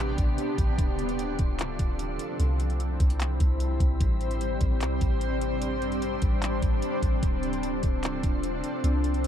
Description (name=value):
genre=hip hop, atmospheric cloud-rap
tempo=149 BPM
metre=4/4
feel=half-time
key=unclear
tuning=A4 = 441 Hz
part: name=granular cloud pad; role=sustained chords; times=0.0-9.3 s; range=C3 to C5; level=-30 LUFS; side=left 1 dB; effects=built-in reverb, sidechain pumping
part: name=soft 808-style bass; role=bass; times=0.0-9.3 s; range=C1 to C2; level=-28 LUFS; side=equal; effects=none
part: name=wind-like tuned noise texture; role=texture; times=0.0-9.3 s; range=C4 to C6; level=-42 LUFS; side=right 2 dB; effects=built-in reverb
part: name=smooth R&B drum kit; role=drums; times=0.2-9.3 s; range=handclaps, hi-hat, kick drum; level=-27 LUFS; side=equal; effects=none
room=little or no reverb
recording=dark, warm production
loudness=-24 LUFS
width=side -10 dB against mid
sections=0.0-9.3 A section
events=none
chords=0.0 Am11; 0.8 Dm7; 2.4 Cmaj7; 4.0 Am11; 7.2 Dm7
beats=0.38 | 0.79 1.19 1.59 1.99 | 2.40 2.80 3.20 3.60 | 4.01 4.41 4.81 5.21 | 5.62 6.02 6.42 6.83 | 7.23 7.63 8.03 8.44 | 8.84 9.24